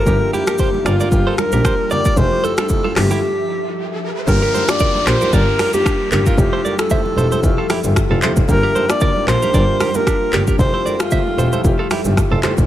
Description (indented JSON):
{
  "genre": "afrobeats",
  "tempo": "114 BPM",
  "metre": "4/4",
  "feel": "swing 55% on 16ths",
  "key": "G dorian",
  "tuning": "A4 = 439 Hz",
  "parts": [
    { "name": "clear alto saxophone", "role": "melody", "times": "0.0-11.8 s", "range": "F4 to D5", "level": "-20 LUFS", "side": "equal", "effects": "tape echo" },
    { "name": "warm concert grand piano", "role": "accompaniment", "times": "0.0-12.7 s", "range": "A3 to E5", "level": "-24 LUFS", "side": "left 4 dB", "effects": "none" },
    { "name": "ethereal airy pad", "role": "sustained chords", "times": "0.0-12.7 s", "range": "F3 to E5", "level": "-27 LUFS", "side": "left 1 dB", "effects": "ensemble chorus, built-in reverb, sidechain pumping" },
    { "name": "direct-recorded clean electric guitar", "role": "riff", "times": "0.0-12.5 s", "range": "D4 to E5", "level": "-24 LUFS", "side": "right 5 dB", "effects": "tape echo" },
    { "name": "warm double bass", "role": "bass", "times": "0.1-12.7 s", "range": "E1 to Bb1", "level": "-19 LUFS", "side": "equal", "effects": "none" },
    { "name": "afro-pop drum kit", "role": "drums", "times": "0.1-12.7 s", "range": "finger snaps, handclaps, hi-hat, kick drum, rim click, shaker", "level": "-18 LUFS", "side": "equal", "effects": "none" },
    { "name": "congas", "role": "percussion", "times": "0.1-12.6 s", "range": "none", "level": "-26 LUFS", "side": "right 4 dB", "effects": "none" },
    { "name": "riser and downlifter", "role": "sound effects", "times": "3.3-8.5 s", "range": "none", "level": "-29 LUFS", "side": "equal", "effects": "none" }
  ],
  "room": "little or no reverb",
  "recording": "none",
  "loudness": "-14 LUFS",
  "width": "side -12 dB against mid",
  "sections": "0.0-4.3 A section; 4.3-12.7 B section",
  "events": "break 3.2-4.3; riser 3.3-4.3",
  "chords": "0.1 Gm7; 2.2 Fmaj9; 4.3 Gm7; 6.4 Fmaj9; 8.5 Gm7; 10.6 Fmaj9"
}